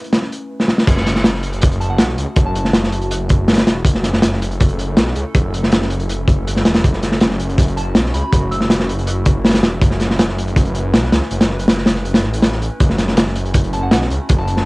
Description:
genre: drum and bass, jungle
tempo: 161 BPM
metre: 4/4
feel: straight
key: F# minor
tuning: A4 = 438 Hz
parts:
  - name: warbly tape-like pad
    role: sustained chords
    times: 0.0-14.7 s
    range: A3 to B4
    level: -27 LUFS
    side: left 1 dB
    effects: chorus, built-in reverb, cassette tape
  - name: crunchy breakbeat drum kit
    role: drums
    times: 0.0-14.7 s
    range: crash cymbal, hi-hat, kick drum, snare drum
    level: -14 LUFS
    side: equal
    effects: cassette tape
  - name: detuned saw bass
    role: bass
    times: 0.9-14.7 s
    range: E1 to C#2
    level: -20 LUFS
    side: equal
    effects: none
  - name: soft synth bell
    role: melody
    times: 1.8-2.7, 7.8-8.7, 13.7-14.7 s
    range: F#5 to E6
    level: -27 LUFS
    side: right 1 dB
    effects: chorus, cassette tape, dub echo
  - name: breakbeat sampler-style drum kit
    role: drums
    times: 12.8-14.6 s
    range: hi-hat, snare drum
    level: -34 LUFS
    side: equal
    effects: none
room: light reverb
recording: home recording on cassette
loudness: -13 LUFS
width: side -24 dB against mid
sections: 0.9-14.7 A section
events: drum fill 0.6; drop 0.9-14.7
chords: 0.0 F#m7 (rootless); 0.9 F#m7

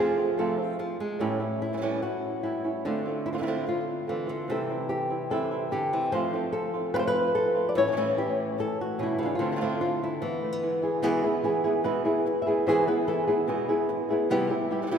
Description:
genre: flamenco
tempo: 146 BPM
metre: 4/4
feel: straight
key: unclear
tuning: A4 = 439 Hz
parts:
  - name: flamenco guitar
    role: melody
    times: 0.0-15.0 s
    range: A2 to E5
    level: -26 LUFS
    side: left 1 dB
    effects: none
  - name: flamenco guitar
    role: stabs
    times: 0.0-15.0 s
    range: E2 to F4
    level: -31 LUFS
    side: right 3 dB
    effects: none
room: wet church reverb, RT60 3.5 s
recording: recorded in a church or concert hall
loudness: -25 LUFS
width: side -7 dB against mid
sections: 0.0-11.0 A section; 11.0-15.0 B section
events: none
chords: 0.0 F; 1.2 A7; 2.8 Dm7; 4.5 C; 6.1 F; 7.8 A7; 9.4 Dm7; 10.2 E; 14.3 Cmaj7

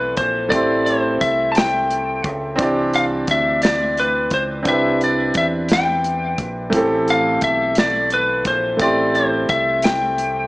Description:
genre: slow six-eight R&B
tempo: 58 BPM (dotted quarters)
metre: 6/8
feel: straight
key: A minor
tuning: A4 = 444 Hz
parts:
  - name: lightly driven lead guitar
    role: melody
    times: 0.0-10.5 s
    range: B4 to A5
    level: -18 LUFS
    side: left 1 dB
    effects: tape echo
  - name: clear baby grand piano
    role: accompaniment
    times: 0.0-10.5 s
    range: E3 to D5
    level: -20 LUFS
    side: right 1 dB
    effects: none
  - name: deep dub fingered electric bass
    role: bass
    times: 0.0-10.5 s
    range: A1 to E2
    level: -29 LUFS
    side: equal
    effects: none
  - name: warm soul drum kit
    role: drums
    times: 0.2-10.3 s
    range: hi-hat, kick drum, snare drum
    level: -21 LUFS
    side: equal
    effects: none
room: light reverb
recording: small speaker sound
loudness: -16 LUFS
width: side -21 dB against mid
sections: 0.0-10.5 A section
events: none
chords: 0.0 Am7; 2.6 Cmaj9; 6.7 Am7

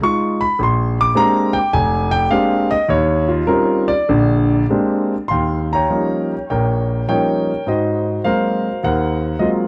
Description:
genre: solo jazz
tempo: 103 BPM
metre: 4/4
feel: swing 67% on 8ths, rubato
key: Eb mixolydian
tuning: A4 = 440 Hz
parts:
  - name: warm concert grand piano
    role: solo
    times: 0.0-9.7 s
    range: F1 to D6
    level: -17 LUFS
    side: equal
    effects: none
room: moderate booth ambience, RT60 0.2 s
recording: dry, close 1970s-style studio recording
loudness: -17 LUFS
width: mono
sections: 0.0-5.3 A section; 5.3-9.7 B section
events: grand piano solo 0.0-5.3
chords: 0.0 Fm7; 0.6 Bb13; 2.9 Eb13; 4.1 Bb13; 5.3 Eb9; 7.7 Ab13

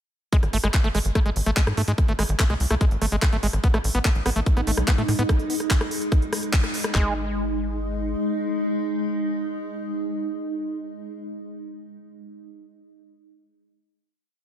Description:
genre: psychedelic trance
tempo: 145 BPM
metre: 4/4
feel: straight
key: unclear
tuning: A4 = 439 Hz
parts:
  - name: overdriven acid bass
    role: riff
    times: 0.3-7.1 s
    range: Ab3 to Cb4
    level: -28 LUFS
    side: equal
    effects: auto-pan, sidechain pumping, tape echo
  - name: garage drum kit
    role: drums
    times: 0.3-7.0 s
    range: handclaps, kick drum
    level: -21 LUFS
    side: equal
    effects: none
  - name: garage drum kit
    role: drums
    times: 0.3-6.9 s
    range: handclaps, hi-hat, rim click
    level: -28 LUFS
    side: equal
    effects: none
  - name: tight sequencer bass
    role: bass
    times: 0.4-8.1 s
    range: Ab1 to A2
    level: -24 LUFS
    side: equal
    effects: none
  - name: evolving wavetable pad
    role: sustained chords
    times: 4.4-11.1 s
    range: Ab3 to Eb4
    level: -27 LUFS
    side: equal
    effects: phaser, built-in reverb, sidechain pumping
  - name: resonant blip pluck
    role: second line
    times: 3.9-4.1 s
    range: Cb4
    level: -40 LUFS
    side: equal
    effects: none
room: light reverb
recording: none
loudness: -21 LUFS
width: side -10 dB against mid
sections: 0.3-6.9 drop; 6.9-10.3 final chord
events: drop 0.3-6.9; band accent 6.5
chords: 0.3 N.C.; 3.6 Ab5

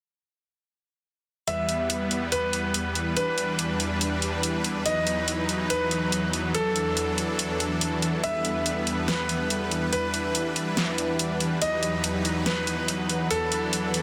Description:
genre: heavy wobble dubstep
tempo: 142 BPM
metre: 4/4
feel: half-time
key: E minor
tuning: A4 = 440 Hz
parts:
  - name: bright concert grand piano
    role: melody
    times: 1.5-13.9 s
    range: A4 to E5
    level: -31 LUFS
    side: equal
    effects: dub echo
  - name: supersaw chords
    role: sustained chords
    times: 1.5-14.0 s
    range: E2 to B4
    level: -30 LUFS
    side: equal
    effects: none
  - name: big-room dance drum kit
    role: drums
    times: 1.5-14.0 s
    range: hi-hat, snare drum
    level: -30 LUFS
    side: equal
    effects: none
  - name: granular cloud pad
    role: texture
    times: 2.8-14.0 s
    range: E3 to B5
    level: -37 LUFS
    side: equal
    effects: built-in reverb
room: moderate lush hall reverb, RT60 1.9 s, digital ambience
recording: dense, heavily limited modern master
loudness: -26 LUFS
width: mono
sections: 1.5-14.0 A section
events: fade-in on ambient pad 1.5-14.0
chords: 1.5 Em; 3.2 G/E; 4.9 B/E; 6.5 D/E; 8.2 Em; 11.6 B/E; 13.3 D/E

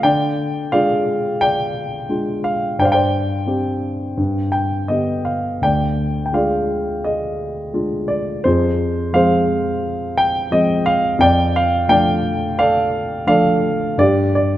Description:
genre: classical, lyrical solo piano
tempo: 86 BPM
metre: 4/4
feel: rubato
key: unclear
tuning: A4 = 440 Hz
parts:
  - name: dark concert grand piano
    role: solo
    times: 0.0-14.6 s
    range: D2 to G5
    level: -16 LUFS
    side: equal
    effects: none
room: moderate concert hall reverb, RT60 2.1 s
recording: none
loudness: -16 LUFS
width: side -13 dB against mid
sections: 0.0-14.6 A section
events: none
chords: 0.0 Ddim; 2.8 Gsus4; 4.2 G; 5.6 Ddim; 8.5 Fm; 11.2 Dm/F; 14.0 G5

